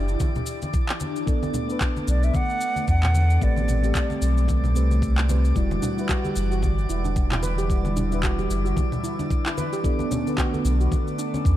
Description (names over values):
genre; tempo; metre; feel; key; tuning
sunset chillout; 112 BPM; 4/4; swing 57% on 16ths; E minor; A4 = 443 Hz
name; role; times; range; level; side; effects
bright wooden flute; melody; 0.0-4.5 s; D5 to F#5; -30 LUFS; right 2 dB; ping-pong delay
airy breathy pad; sustained chords; 0.0-11.6 s; D3 to F#5; -32 LUFS; right 1 dB; chorus, phaser
warm sub bass; bass; 0.0-11.6 s; E1 to E2; -21 LUFS; equal; none
drifting glass-harmonics texture; texture; 0.0-11.6 s; D5 to D6; -36 LUFS; left 2 dB; chorus, built-in reverb
electronic shaker and handclaps; drums; 0.1-11.6 s; none; -32 LUFS; equal; none
electronic kick drum; drums; 0.2-11.6 s; none; -24 LUFS; equal; none
congas; percussion; 0.2-11.4 s; none; -32 LUFS; left 2 dB; none
mellow FM electric piano; accompaniment; 1.3-11.6 s; D3 to F#5; -30 LUFS; left 1 dB; chorus, auto-pan, ping-pong delay
steel pan; arpeggios; 5.8-11.4 s; C#4 to B4; -31 LUFS; right 3 dB; ping-pong delay
room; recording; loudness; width
light reverb, digital ambience; dark, warm production; -20 LUFS; side -13 dB against mid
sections
0.0-11.6 A section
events
none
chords
0.0 Em9; 1.3 Bm7; 3.4 Am9; 5.6 Em9; 9.8 Bm7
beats
0.20 0.74 | 1.27 1.81 2.34 2.88 | 3.41 3.95 4.49 5.02 | 5.56 6.09 6.63 7.16 | 7.70 8.24 8.77 9.31 | 9.84 10.38 10.91 11.45